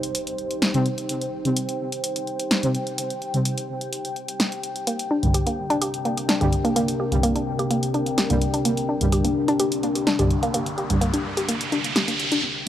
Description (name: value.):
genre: melodic techno.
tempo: 127 BPM.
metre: 4/4.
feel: straight.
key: unclear.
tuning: A4 = 440 Hz.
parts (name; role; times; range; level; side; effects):
punchy analog drum machine; drums; 0.0-12.4 s; hi-hat, snare drum; -25 LUFS; equal; none.
deep dark ambient pad; texture; 0.0-12.7 s; C3 to G5; -28 LUFS; left 2 dB; chorus, built-in reverb.
synth brass stab; stabs; 0.7-11.1 s; C2 to C4; -25 LUFS; equal; chorus, tape echo.
woody wave-folded pluck; arpeggios; 4.9-12.5 s; Bb3 to G4; -24 LUFS; equal; chorus, tape echo.
riser; sound effects; 9.9-12.4 s; none; -29 LUFS; right 2 dB; none.
room: light reverb.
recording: dry, gritty hardware recording.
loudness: -21 LUFS.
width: side -11 dB against mid.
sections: 0.0-12.4 A section.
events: riser 9.9-12.4.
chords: 0.0 Cm; 4.9 Gm/C.